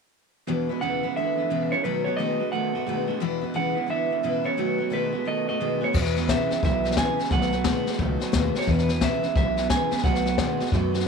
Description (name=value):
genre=rockabilly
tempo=176 BPM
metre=4/4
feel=swing 63% on 8ths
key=E major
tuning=A4 = 439 Hz
part: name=picked steel-string acoustic guitar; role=accompaniment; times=0.5-11.1 s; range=E2 to F#4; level=-28 LUFS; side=left 11 dB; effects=none
part: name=electric guitar through a small old amp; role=riff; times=0.5-11.0 s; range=E2 to A3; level=-29 LUFS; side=right 15 dB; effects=lush chorus
part: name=electric guitar through a small old amp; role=melody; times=0.8-10.7 s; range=B4 to G#5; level=-27 LUFS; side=right 4 dB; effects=tape echo
part: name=jazz brush drum kit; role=drums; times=5.9-11.0 s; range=crash cymbal, hi-hat, kick drum, snare drum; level=-26 LUFS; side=left 4 dB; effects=none
part: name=upright bass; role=bass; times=6.0-11.1 s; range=B1 to F#2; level=-27 LUFS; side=right 1 dB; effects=none
room=light reverb, small room reverb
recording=1960s-style stereo with parts hard left and right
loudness=-22 LUFS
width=side -5 dB against mid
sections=0.5-5.9 A section; 5.9-11.1 B section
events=none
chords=0.5 E; 1.8 B7; 3.2 E; 4.6 B7; 5.9 E; 7.3 B7; 8.7 E; 10.0 B7